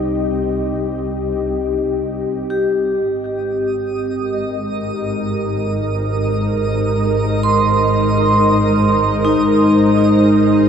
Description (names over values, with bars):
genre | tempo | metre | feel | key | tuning
ambient | free time | none | none | unclear | A4 = 439 Hz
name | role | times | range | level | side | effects
ethereal airy pad | sustained chords | 0.0-10.7 s | Ab3 to Eb5 | -18 LUFS | equal | ensemble chorus, built-in reverb
vibraphone with medium hard mallets | arpeggios | 0.0-10.7 s | Eb4 to C6 | -19 LUFS | equal | tape echo
dark chamber double bass section | bass | 0.0-10.7 s | Ab1 to C2 | -22 LUFS | equal | none
twinkling granular texture | texture | 3.7-10.7 s | Eb5 | -25 LUFS | right 2 dB | built-in reverb, wide subtle chorus
room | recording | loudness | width
wet huge ambient reverb, RT60 8.0 s | dreamy mix soaked in reverb | -14 LUFS | side -7 dB against mid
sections
0.0-10.7 A section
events
filter sweep on ambient pad 0.0-10.7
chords
0.0 Cm; 3.1 Abmaj7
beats
free time